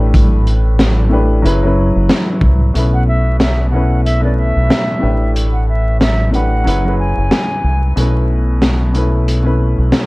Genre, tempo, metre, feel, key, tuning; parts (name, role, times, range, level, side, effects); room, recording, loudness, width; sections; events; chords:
hip hop, boom-bap hip-hop; 92 BPM; 4/4; swing 56% on 16ths; B minor; A4 = 440 Hz
warm upright piano; accompaniment; 0.0-10.1 s; A2 to B4; -18 LUFS; left 1 dB; cassette tape, high-pass filter, low-pass filter
fingered electric bass; bass; 0.0-9.9 s; F#1 to C2; -14 LUFS; equal
crunchy breakbeat drum kit; drums; 0.1-10.1 s; hi-hat, kick drum, snare drum; -16 LUFS; equal
breathy silver concert flute; melody; 2.9-7.9 s; D5 to G#5; -21 LUFS; equal; high-pass filter, low-pass filter, tape echo
light reverb; dark, warm production, vinyl crackle; -11 LUFS; side -22 dB against mid
0.0-2.7 A section; 2.7-10.1 A section
break 2.7-10.1
0.0 A9sus4; 1.4 F#9sus4; 2.7 B9sus4; 5.0 A9sus4; 6.7 F#9sus4; 8.0 B9sus4